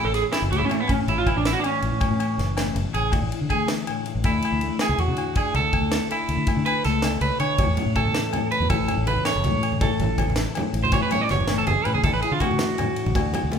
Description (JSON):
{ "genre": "highlife guitar band", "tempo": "108 BPM (dotted quarters)", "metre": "12/8", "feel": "straight", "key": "A major", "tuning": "A4 = 442 Hz", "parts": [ { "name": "nylon-string guitar", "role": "accompaniment", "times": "0.0-13.6 s", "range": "A2 to A4", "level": "-28 LUFS", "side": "left 8 dB", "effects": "none" }, { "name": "electric guitar at the edge of break-up", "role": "arpeggios", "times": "0.0-13.5 s", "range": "A3 to D5", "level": "-25 LUFS", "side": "right 4 dB", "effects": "none" }, { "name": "fingered electric bass", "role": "bass", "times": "0.1-13.6 s", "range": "F#1 to D3", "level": "-26 LUFS", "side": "equal", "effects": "none" }, { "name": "tight funk drum kit", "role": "drums", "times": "0.1-13.6 s", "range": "kick drum, ride cymbal, snare drum", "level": "-28 LUFS", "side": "equal", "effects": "none" }, { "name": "agogo bells", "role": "percussion", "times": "0.3-13.5 s", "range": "none", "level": "-32 LUFS", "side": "left 4 dB", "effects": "none" }, { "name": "congas", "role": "percussion", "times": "7.6-13.6 s", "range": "none", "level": "-29 LUFS", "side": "right 1 dB", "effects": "none" } ], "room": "moderate large studio reverb, RT60 1.4 s", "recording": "band playing live in one room", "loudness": "-20 LUFS", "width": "side -7 dB against mid", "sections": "0.0-13.6 A section", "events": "clean electric guitar solo 0.0-13.6", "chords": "0.0 A; 3.1 Dsus2; 7.6 Aadd9; 12.0 Dsus2" }